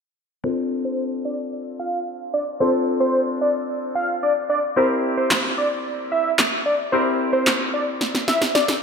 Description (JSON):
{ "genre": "dance-pop", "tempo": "111 BPM", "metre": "4/4", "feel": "straight", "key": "D minor", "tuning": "A4 = 439 Hz", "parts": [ { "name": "fat analog lead", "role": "melody", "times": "0.4-8.6 s", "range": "C5 to F5", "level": "-22 LUFS", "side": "equal", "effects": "chorus, low-pass filter, digital delay" }, { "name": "clear concert grand piano", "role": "accompaniment", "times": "0.4-8.8 s", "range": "C4 to Bb4", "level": "-25 LUFS", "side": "left 3 dB", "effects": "wide subtle chorus, low-pass filter" }, { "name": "electronic snare drum and handclaps", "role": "drums", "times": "5.3-8.8 s", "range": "none", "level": "-21 LUFS", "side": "right 1 dB", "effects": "overdrive, gated reverb" } ], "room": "wet plate reverb, RT60 2.7 s", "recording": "bright 1980s-style digital production", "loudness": "-19 LUFS", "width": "side -6 dB against mid", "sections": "0.4-8.8 A section", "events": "filter sweep 0.4-8.8; drum fill 8.0-8.8", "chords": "0.4 Dm7; 4.8 C7" }